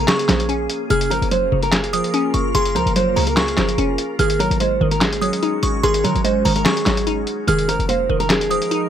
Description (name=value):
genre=hip hop, trap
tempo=146 BPM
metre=4/4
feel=half-time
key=unclear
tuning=A4 = 439 Hz
part: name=nylon-string guitar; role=melody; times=0.0-8.9 s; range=Ab4 to C5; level=-21 LUFS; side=right 2 dB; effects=none
part: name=delicate synth tine bell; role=second line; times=0.0-8.9 s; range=Bb5 to F6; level=-26 LUFS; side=right 2 dB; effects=chorus, digital delay
part: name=glassy wavetable pluck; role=accompaniment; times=0.0-8.9 s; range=Db3 to Eb4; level=-23 LUFS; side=left 1 dB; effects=chorus
part: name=glassy FM pad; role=sustained chords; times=0.0-8.9 s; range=F3 to Bb4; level=-26 LUFS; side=left 1 dB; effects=ensemble chorus, built-in reverb
part: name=short 808-style bass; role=bass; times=0.0-8.6 s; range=F1 to Eb3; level=-23 LUFS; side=equal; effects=none
part: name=lo-fi sampler-style drum kit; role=drums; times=0.1-8.8 s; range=handclaps, hi-hat, snare drum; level=-21 LUFS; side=left 1 dB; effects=none
room=light reverb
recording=none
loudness=-16 LUFS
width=side -9 dB against mid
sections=0.0-8.9 A section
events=none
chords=0.0 Bbm7; 0.9 Gbmaj7; 4.2 Ab7sus4; 7.5 F7sus4